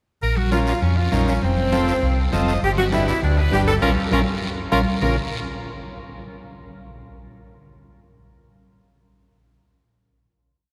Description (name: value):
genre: latin, cumbia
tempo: 200 BPM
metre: 4/4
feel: straight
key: Bb harmonic minor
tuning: A4 = 438 Hz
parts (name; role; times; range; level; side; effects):
- edgy saxophone section; melody; 0.2-5.2 s; C4 to B4; -26 LUFS; equal; none
- fingered electric bass; bass; 0.2-5.2 s; F1 to F2; -25 LUFS; equal; none
- congas; percussion; 0.2-5.1 s; none; -30 LUFS; equal; none
- guiro; percussion; 0.2-5.1 s; none; -38 LUFS; equal; none
- overdriven combo organ; accompaniment; 0.5-5.2 s; C4 to Eb5; -28 LUFS; equal; none
room: wet cathedral reverb, RT60 5.2 s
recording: recorded in a church or concert hall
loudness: -20 LUFS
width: mono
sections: 0.2-5.0 A section; 5.0-6.2 final chord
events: transistor combo organ fill 2.2-2.6; band accent 3.8-5.0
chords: 0.2 Bbm; 1.4 F7; 2.6 G; 3.8 Bbm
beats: | 0.23 0.53 0.83 1.13 | 1.43 1.73 2.03 2.33 | 2.63 2.93 3.23 3.53 | 3.83 4.12 4.42 4.72 | 5.02